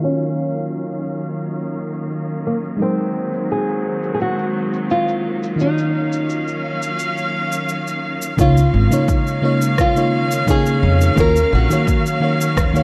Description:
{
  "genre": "sunset chillout",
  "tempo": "86 BPM",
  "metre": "4/4",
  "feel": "straight",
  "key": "Eb dorian",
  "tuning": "A4 = 437 Hz",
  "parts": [
    { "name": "nylon-string guitar", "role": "melody", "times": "0.0-12.8 s", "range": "Bb3 to Bb4", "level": "-24 LUFS", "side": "equal", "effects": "vintage 12-bit sampler grit, delay" },
    { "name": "mellow FM electric piano", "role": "accompaniment", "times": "0.0-12.8 s", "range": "Db3 to F5", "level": "-23 LUFS", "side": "equal", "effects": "chorus, low-pass filter, delay" },
    { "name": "warm studio string section", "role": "sustained chords", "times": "0.0-12.8 s", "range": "Eb3 to F5", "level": "-26 LUFS", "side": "equal", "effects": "none" },
    { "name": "electronic shaker and rim click", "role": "drums", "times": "0.0-12.8 s", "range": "none", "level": "-30 LUFS", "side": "equal", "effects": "none" },
    { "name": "upright bass", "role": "bass", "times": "8.4-12.8 s", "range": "Ab1 to F2", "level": "-18 LUFS", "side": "equal", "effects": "none" },
    { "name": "electronic kick drum", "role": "drums", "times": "8.4-12.7 s", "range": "none", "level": "-22 LUFS", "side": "equal", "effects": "none" }
  ],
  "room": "moderate lush hall reverb, RT60 2.8 s",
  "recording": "dark, warm production, low-pass filter",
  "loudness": "-19 LUFS",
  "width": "mono",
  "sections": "0.0-8.4 A section; 8.4-12.8 B section",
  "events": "filter sweep on FM electric piano 0.0-8.4; filter sweep 0.0-8.4",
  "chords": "0.0 Ebm9; 2.8 Ab9; 5.6 Ebm9; 8.4 Db69; 11.2 Ebm9"
}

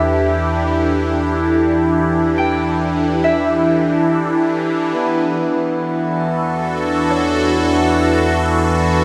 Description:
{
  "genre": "ambient",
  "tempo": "70 BPM",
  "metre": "4/4",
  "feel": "straight",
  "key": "E dorian",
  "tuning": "A4 = 440 Hz",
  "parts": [
    { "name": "evolving wavetable pad", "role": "sustained chords", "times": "0.0-9.0 s", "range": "E3 to A4", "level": "-18 LUFS", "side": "equal", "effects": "phaser, built-in reverb" },
    { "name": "concert harp", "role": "arpeggios", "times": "0.0-9.0 s", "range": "C#5 to G5", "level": "-26 LUFS", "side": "equal", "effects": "tape echo" },
    { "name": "deep rumbling drone", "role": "bass", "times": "0.0-9.0 s", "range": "E2", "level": "-27 LUFS", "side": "equal", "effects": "built-in reverb" },
    { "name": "hand-pumped harmonium", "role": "drone", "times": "4.9-9.0 s", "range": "E3 to B3", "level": "-22 LUFS", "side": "equal", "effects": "none" }
  ],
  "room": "wet lush hall reverb, RT60 3.1 s",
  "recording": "none",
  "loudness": "-17 LUFS",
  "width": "mono",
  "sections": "0.0-9.0 A section",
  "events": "none",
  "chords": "0.0 Em11; 5.0 Dadd9/E"
}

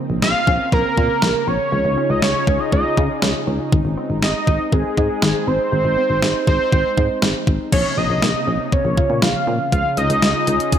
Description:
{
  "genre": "synth-pop",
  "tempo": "120 BPM",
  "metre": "4/4",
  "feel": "straight",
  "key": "unclear",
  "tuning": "A4 = 440 Hz",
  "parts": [
    { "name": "lush unison pad", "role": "sustained chords", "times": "0.0-10.8 s", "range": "C3 to Ab4", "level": "-25 LUFS", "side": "equal", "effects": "chorus" },
    { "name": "wide unison pluck", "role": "arpeggios", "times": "0.0-10.8 s", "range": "Eb3 to Eb5", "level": "-29 LUFS", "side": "left 1 dB", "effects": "none" },
    { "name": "solid FM bass", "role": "bass", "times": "0.1-10.6 s", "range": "Ab1 to Db3", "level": "-22 LUFS", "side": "equal", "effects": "none" },
    { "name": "fat analog lead", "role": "melody", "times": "0.2-10.8 s", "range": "Ab4 to F5", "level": "-20 LUFS", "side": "right 1 dB", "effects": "chorus, ping-pong delay" },
    { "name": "clean 12-bit digital drum machine", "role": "drums", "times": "0.2-10.8 s", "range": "crash cymbal, hi-hat, kick drum, snare drum", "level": "-19 LUFS", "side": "equal", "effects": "none" }
  ],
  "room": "moderate plate reverb, RT60 1.6 s, digital ambience",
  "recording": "bright 1980s-style digital production",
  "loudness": "-16 LUFS",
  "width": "side -9 dB against mid",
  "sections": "0.0-7.7 A section; 7.7-10.8 B section",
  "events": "none",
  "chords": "0.0 Bbmadd9; 1.7 Dbadd9; 3.7 Ab; 7.7 Bbmadd9; 9.7 Dbadd9"
}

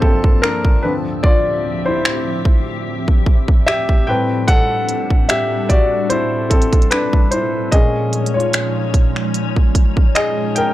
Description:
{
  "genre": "contemporary R&B",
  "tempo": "74 BPM",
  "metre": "4/4",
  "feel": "swing 54% on 16ths",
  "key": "unclear",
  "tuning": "A4 = 441 Hz",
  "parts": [
    { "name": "warm grand piano", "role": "accompaniment", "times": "0.0-10.7 s", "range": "G2 to G5", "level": "-18 LUFS", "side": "left 1 dB", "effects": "none" },
    { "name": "glassy FM pad", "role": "sustained chords", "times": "0.0-10.7 s", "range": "D2 to A5", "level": "-23 LUFS", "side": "left 1 dB", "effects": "ensemble chorus, built-in reverb, sidechain pumping" },
    { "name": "trap drum kit", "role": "drums", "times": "0.0-10.7 s", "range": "finger snaps, hi-hat, kick drum", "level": "-14 LUFS", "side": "equal", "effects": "none" }
  ],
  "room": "little or no reverb",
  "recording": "dry, gritty hardware recording",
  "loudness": "-14 LUFS",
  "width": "side -14 dB against mid",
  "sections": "0.0-10.7 A section",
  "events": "grand piano solo 0.0-10.7",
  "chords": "0.0 Gm11; 0.8 Dm11; 4.1 Am11; 7.7 Bbm7"
}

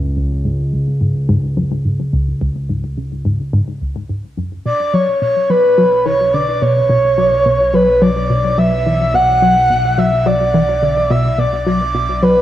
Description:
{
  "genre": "ambient, sequencer-driven space music",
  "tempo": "107 BPM",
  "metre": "4/4",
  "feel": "straight",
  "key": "unclear",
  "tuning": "A4 = 440 Hz",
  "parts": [
    { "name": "tight sequenced synth", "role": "riff", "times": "0.0-12.4 s", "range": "C#2 to F#3", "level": "-18 LUFS", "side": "left 1 dB", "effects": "chorus, ping-pong delay" },
    { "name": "fat analog bass", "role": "bass", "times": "0.0-12.4 s", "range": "B1 to C#2", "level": "-20 LUFS", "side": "equal", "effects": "none" },
    { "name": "breathy flute-like synth lead", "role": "melody", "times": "4.7-12.4 s", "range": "B4 to F#5", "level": "-13 LUFS", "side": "equal", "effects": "lush chorus, cassette tape, ping-pong delay" }
  ],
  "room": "wet spring reverb, RT60 1.4 s",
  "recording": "home recording on cassette",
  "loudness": "-12 LUFS",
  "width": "side -12 dB against mid",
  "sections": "0.0-12.4 A section",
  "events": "none",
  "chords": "0.0 C#5; 4.7 Bm"
}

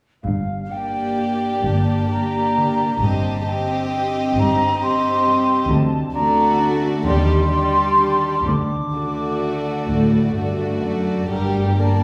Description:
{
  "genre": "classical, slow romantic movement for symphony orchestra",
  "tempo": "41-46 BPM (dotted quarters)",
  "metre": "6/8",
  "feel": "rubato",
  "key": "G minor",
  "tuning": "A4 = 440 Hz",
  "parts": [
    { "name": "wooden flute", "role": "second line", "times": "0.2-12.0 s", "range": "F5 to D6", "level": "-24 LUFS", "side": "equal", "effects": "none" },
    { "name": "concert harp", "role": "arpeggios", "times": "0.2-12.0 s", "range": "G2 to A4", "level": "-28 LUFS", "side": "equal", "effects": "none" },
    { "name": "warm chamber cello section", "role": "bass", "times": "0.2-12.0 s", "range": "D2 to A2", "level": "-26 LUFS", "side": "equal", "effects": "none" },
    { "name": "warm chamber double bass section", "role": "bass", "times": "0.2-12.0 s", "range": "G1 to Eb2", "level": "-27 LUFS", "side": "equal", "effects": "none" },
    { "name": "warm chamber violin section", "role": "melody", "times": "0.7-12.0 s", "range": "Bb4 to Eb5", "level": "-33 LUFS", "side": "equal", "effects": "none" },
    { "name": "warm chamber violin section", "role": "second line", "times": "0.7-12.0 s", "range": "F#4 to Bb4", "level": "-29 LUFS", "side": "equal", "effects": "none" },
    { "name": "rich chamber viola section", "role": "accompaniment", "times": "0.7-12.0 s", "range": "G3 to C4", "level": "-28 LUFS", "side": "equal", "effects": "none" }
  ],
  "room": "wet scoring stage reverb, RT60 1.6 s",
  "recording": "heard from further back in the room",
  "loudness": "-19 LUFS",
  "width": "mono",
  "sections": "0.2-12.0 A section",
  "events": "none",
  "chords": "0.2 Gm; 3.0 Cm/G; 5.7 D; 7.1 Ebmaj7; 8.5 D; 11.3 Gm"
}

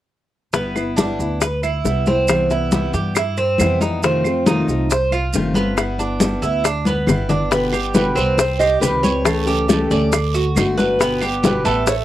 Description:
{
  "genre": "latin, Cuban son and guajira",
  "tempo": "138 BPM",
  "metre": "4/4",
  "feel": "straight",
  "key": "G major",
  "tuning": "A4 = 440 Hz",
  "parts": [
    { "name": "picked steel-string acoustic guitar", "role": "accompaniment", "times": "0.5-11.9 s", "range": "B2 to G4", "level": "-22 LUFS", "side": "left 2 dB", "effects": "cassette tape" },
    { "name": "Cuban tres", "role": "arpeggios", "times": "0.5-12.0 s", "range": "A3 to D5", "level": "-21 LUFS", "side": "right 3 dB", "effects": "cassette tape" },
    { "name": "upright bass", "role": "bass", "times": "0.5-12.0 s", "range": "G1 to G2", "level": "-23 LUFS", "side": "equal", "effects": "none" },
    { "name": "bongos", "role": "percussion", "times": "0.5-12.0 s", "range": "none", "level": "-22 LUFS", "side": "left 5 dB", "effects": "none" },
    { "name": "congas", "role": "percussion", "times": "0.5-12.0 s", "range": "none", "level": "-21 LUFS", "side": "left 1 dB", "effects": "none" },
    { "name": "maracas", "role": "percussion", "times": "0.5-12.0 s", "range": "none", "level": "-29 LUFS", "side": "right 6 dB", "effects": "none" },
    { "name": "claves", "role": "percussion", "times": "0.8-11.4 s", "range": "none", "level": "-29 LUFS", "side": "right 7 dB", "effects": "none" },
    { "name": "guiro", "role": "percussion", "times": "7.5-12.0 s", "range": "none", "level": "-31 LUFS", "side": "right 9 dB", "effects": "none" },
    { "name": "nylon-string guitar", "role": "melody", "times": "7.9-11.9 s", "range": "A4 to Eb5", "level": "-20 LUFS", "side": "right 2 dB", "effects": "cassette tape" }
  ],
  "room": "moderate studio ambience, RT60 0.5 s",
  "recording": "home recording on cassette",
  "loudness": "-16 LUFS",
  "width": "side -13 dB against mid",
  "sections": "0.5-7.5 A section; 7.5-12.0 B section",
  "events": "drum fill 6.9-7.5",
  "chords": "0.5 G6; 2.3 Cmaj7; 4.0 F7; 5.8 G6; 7.5 G; 8.4 Cm; 9.3 A7/C#; 10.1 D; 11.0 G"
}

